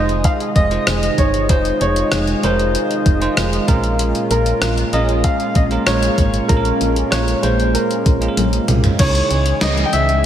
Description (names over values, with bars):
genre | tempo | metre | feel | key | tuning
1980s-style pop | 96 BPM | 4/4 | straight | unclear | A4 = 436 Hz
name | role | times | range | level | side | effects
warm baby grand piano | melody | 0.0-10.3 s | Bb4 to G5 | -20 LUFS | left 1 dB | tape echo, slapback echo
bell-like tine electric piano | accompaniment | 0.0-10.3 s | Bb2 to Eb5 | -22 LUFS | right 4 dB | slapback echo
lush unison pad | sustained chords | 0.0-10.3 s | C3 to Ab4 | -25 LUFS | left 1 dB | chorus
mellow synth brass | stabs | 0.0-8.6 s | Bb3 to Eb5 | -26 LUFS | equal | chorus, tape echo, slapback echo
solid FM bass | bass | 0.0-10.3 s | F1 to Db2 | -20 LUFS | equal | none
gated 80s digital drum machine | drums | 0.1-10.2 s | crash cymbal, hi-hat, kick drum, rim click, snare drum, toms | -18 LUFS | equal | gated reverb, gated reverb snare
room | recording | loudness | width
moderate lush hall reverb, RT60 2.3 s | big arena sound | -14 LUFS | side -10 dB against mid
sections
0.0-9.0 A section; 9.0-10.3 B section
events
drum fill 8.4-9.0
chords
0.0 Fm7; 3.7 Bbm7; 9.0 Dbmadd9